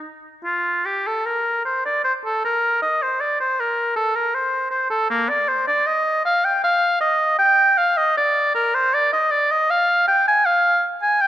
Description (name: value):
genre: classical, baroque-style fantasia for unaccompanied oboe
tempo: 78 BPM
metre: 3/4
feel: rubato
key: Bb major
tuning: A4 = 440 Hz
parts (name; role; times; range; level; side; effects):
- clear oboe; solo; 0.0-11.3 s; Bb3 to Ab5; -17 LUFS; equal; none
room: moderate concert hall reverb, RT60 2.1 s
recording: dark, warm production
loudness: -17 LUFS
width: side -12 dB against mid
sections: 0.5-11.3 A section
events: none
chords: none